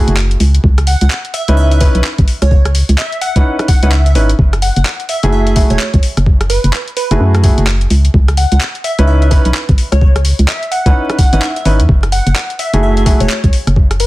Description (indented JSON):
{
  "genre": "UK garage, two-step garage",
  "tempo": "128 BPM",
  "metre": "4/4",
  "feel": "swing 61% on 16ths",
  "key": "F# dorian",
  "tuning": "A4 = 439 Hz",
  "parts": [
    { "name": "warm baby grand piano", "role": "stabs", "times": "0.0-13.2 s", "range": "A3 to B4", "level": "-18 LUFS", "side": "right 1 dB", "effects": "dub echo" },
    { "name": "organ-like FM bass", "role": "bass", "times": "0.1-14.1 s", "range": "E1 to F#2", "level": "-11 LUFS", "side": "equal", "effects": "none" },
    { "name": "garage drum kit", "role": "drums", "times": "0.1-14.1 s", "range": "handclaps, hi-hat, rim click", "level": "-20 LUFS", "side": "equal", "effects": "soft clipping on snare, small room ambience" },
    { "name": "electronic kick drum", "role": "drums", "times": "0.6-13.9 s", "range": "none", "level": "-10 LUFS", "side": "equal", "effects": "overdrive, small room ambience" },
    { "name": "glassy wavetable pluck", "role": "melody", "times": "0.9-14.1 s", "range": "B4 to F#5", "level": "-20 LUFS", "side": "equal", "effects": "chorus, dub echo" }
  ],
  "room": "light reverb",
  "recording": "dense, heavily limited modern master, vinyl crackle",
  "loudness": "-9 LUFS",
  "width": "side -18 dB against mid",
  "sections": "0.0-14.1 A section",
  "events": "kick drops out 3.9-4.4",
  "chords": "0.0 F#m9; 0.6 C#m9; 4.4 F#m9; 8.1 C#m9; 11.9 F#m9"
}